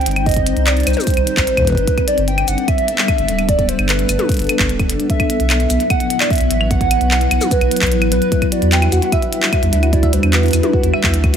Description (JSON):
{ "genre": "IDM", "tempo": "149 BPM", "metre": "4/4", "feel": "straight", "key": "E minor", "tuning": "A4 = 440 Hz", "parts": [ { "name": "warbly nostalgic lead", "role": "melody", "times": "0.0-11.1 s", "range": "B4 to G5", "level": "-20 LUFS", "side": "right 1 dB", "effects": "wide subtle chorus, tape echo" }, { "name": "granular cloud pad", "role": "sustained chords", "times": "0.0-11.4 s", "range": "F#3 to C5", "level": "-21 LUFS", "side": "left 1 dB", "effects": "built-in reverb, sidechain pumping" }, { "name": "warm sub bass", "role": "bass", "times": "0.0-11.4 s", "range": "D1 to E2", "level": "-18 LUFS", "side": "equal", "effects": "none" }, { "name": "glitchy drum kit", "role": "drums", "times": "0.0-11.4 s", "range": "claves, handclaps, hi-hat, shaker, toms", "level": "-20 LUFS", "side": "left 1 dB", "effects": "small room ambience" }, { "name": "electronic kick drum", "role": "drums", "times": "0.3-11.3 s", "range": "none", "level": "-19 LUFS", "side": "equal", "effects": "small room ambience" }, { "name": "harp-like synth pluck", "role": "arpeggios", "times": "8.3-11.4 s", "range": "E4 to E5", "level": "-22 LUFS", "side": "right 3 dB", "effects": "chorus, tape echo" } ], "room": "light reverb, digital ambience", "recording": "none", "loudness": "-13 LUFS", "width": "side -8 dB against mid", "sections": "0.0-11.4 A section", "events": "none", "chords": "0.0 Cm; 1.9 Gadd9; 5.1 Bsus4; 8.3 Em7", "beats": "| 0.26 0.67 1.07 1.47 | 1.88 2.28 2.68 3.08 | 3.49 3.89 4.29 4.69 | 5.10 5.50 5.90 6.30 | 6.71 7.11 7.51 7.92 | 8.32 8.72 9.12 9.53 | 9.93 10.33 10.73 11.14" }